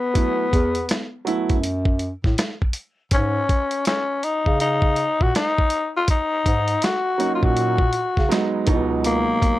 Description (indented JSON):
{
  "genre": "hip hop, jazz-hop",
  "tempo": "81 BPM",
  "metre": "4/4",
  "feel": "swing 63% on 16ths",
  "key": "unclear",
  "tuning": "A4 = 439 Hz",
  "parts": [
    { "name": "growling tenor saxophone", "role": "melody", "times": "0.0-9.6 s", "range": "A#3 to F#4", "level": "-21 LUFS", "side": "left 2 dB", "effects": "none" },
    { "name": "warm grand piano", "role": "accompaniment", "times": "0.1-1.6, 7.2-9.6 s", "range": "B2 to E4", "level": "-23 LUFS", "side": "right 4 dB", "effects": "none" },
    { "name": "dusty soul sampler-style drum kit", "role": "drums", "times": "0.2-9.6 s", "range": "hi-hat, kick drum, snare drum", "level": "-21 LUFS", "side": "equal", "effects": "none" },
    { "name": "dark bass clarinet", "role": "bass", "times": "0.5-9.3 s", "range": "C#2 to C#3", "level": "-24 LUFS", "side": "equal", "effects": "none" }
  ],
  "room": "light reverb",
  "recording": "none",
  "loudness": "-18 LUFS",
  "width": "side -16 dB against mid",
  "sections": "0.0-9.6 A section",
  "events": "none",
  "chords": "0.0 Esus4; 3.1 G#9sus4; 8.7 C#9sus4",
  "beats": "| 0.15 0.90 1.64 2.38 | 3.12 3.86 4.60 5.34 | 6.08 6.82 7.56 8.30 | 9.04"
}